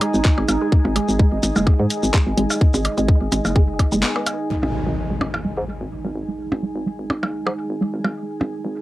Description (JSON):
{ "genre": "minimal techno", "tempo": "127 BPM", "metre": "4/4", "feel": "swing 54% on 16ths", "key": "unclear", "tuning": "A4 = 440 Hz", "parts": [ { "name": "resonant blip pluck", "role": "riff", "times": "0.0-8.7 s", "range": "G#3 to B3", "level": "-26 LUFS", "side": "right 2 dB", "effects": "chorus, phaser, sidechain pumping, cassette tape, tape echo" }, { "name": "garage drum kit", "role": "drums", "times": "0.0-4.4 s", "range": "handclaps, hi-hat, shaker", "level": "-24 LUFS", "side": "left 1 dB", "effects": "overdrive" }, { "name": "percussion blips", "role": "percussion", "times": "0.0-8.5 s", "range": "none", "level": "-25 LUFS", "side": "right 1 dB", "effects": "none" }, { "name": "deep dark ambient pad", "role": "texture", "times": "0.0-8.8 s", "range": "D#4 to G#5", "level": "-26 LUFS", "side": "right 1 dB", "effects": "chorus, built-in reverb, sidechain pumping, cassette tape" }, { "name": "hollow knocking FM bass", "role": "bass", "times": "0.1-8.8 s", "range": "F#1 to G#2", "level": "-23 LUFS", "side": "equal", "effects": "sidechain pumping, high-pass filter" }, { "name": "electronic kick drum", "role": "drums", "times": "0.2-3.9 s", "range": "none", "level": "-15 LUFS", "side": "equal", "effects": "overdrive" }, { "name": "impact", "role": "sound effects", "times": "4.5-6.4 s", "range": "none", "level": "-28 LUFS", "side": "equal", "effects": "none" } ], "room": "light reverb", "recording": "home recording on cassette", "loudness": "-18 LUFS", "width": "side -16 dB against mid", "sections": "0.0-4.5 A section; 4.5-8.8 B section", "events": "break 4.0-4.5; band accent 4.0; impact 4.5-6.4", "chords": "0.0 G#5", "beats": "0.25 | 0.72 1.20 1.67 2.14 | 2.61 3.08 3.56 4.03 | 4.50 4.97 5.45 5.92 | 6.39 6.86 7.34 7.81 | 8.28 8.75" }